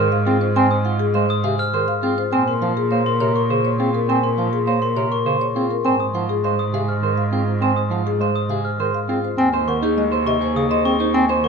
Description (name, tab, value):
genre	classical, minimalist pattern music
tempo	102 BPM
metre	3/4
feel	straight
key	unclear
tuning	A4 = 440 Hz
part	marimba with soft mallets	melody	0.0-11.5 s	Ab4 to Ab5	-23 LUFS	left 12 dB	none
part	warm bass clarinet	accompaniment	0.0-11.5 s	C3 to C4	-24 LUFS	right 1 dB	none
part	electric guitar at the edge of break-up	arpeggios	0.0-11.5 s	Eb4 to C5	-24 LUFS	right 8 dB	none
part	rich cello	bass	0.0-11.5 s	Eb2 to Bb2	-23 LUFS	right 4 dB	none
part	glockenspiel with soft plastic mallets	arpeggios	0.7-11.5 s	C6 to F6	-27 LUFS	left 4 dB	none
room	moderate large studio reverb, RT60 1.2 s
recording	dark, warm production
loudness	-17 LUFS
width	side -5 dB against mid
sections	0.0-9.4 A section; 9.4-11.5 B section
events	none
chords	0.0 Ab; 2.3 Bbm7; 5.9 Ab; 9.4 Absus4/Eb